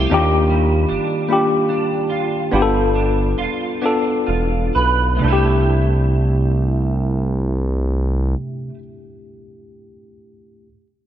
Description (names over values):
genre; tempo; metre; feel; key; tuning
R&B; 41-51 BPM (dotted quarters); 6/8; straight; C major; A4 = 440 Hz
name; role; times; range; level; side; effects
clean electric guitar; second line; 0.0-8.8 s; C3 to B4; -22 LUFS; right 4 dB; ensemble chorus
tine electric piano; accompaniment; 0.0-10.7 s; A3 to A4; -20 LUFS; left 2 dB; overdrive, medium stereo tremolo
smooth synth bass; bass; 0.0-8.4 s; E1 to Eb2; -18 LUFS; equal; none
room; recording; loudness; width
moderate lush hall reverb, RT60 2.5 s; dreamy mix soaked in reverb; -16 LUFS; side -11 dB against mid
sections
0.0-5.2 A section; 5.2-8.2 B section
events
slowing down 0.1-5.2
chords
0.1 Ebmaj9; 2.5 G7; 5.2 C6